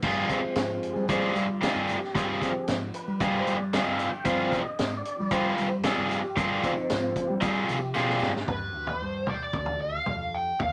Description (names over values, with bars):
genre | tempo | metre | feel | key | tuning
psychedelic rock | 114 BPM | 4/4 | straight | unclear | A4 = 438 Hz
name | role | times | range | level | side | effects
cranked stack guitar | riff | 0.0-8.3 s | G3 to Ab4 | -29 LUFS | equal | overdrive
growling fingered electric bass | bass | 0.0-10.7 s | D2 to G3 | -36 LUFS | equal | overdrive
tanpura | drone | 0.0-10.7 s | G2 to G3 | -46 LUFS | equal | none
vintage drum kit | drums | 0.0-10.7 s | crash cymbal, hi-hat, kick drum, snare drum, toms | -34 LUFS | equal | none
mellow tonewheel organ | sustained chords | 0.3-8.4 s | F3 to G5 | -34 LUFS | equal | slow rotary speaker, overdrive, chorus vibrato
tambourine | percussion | 0.3-8.4 s | none | -55 LUFS | equal | none
smooth overdriven lead guitar | melody | 8.5-10.7 s | B4 to G5 | -32 LUFS | equal | wah
room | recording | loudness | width
moderate studio ambience, RT60 0.4 s | none | -28 LUFS | mono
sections
0.0-8.5 A section; 8.5-10.7 B section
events
tonewheel organ solo 0.0-8.5; drum fill 8.0-8.5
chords
0.0 Fm/G; 8.5 G5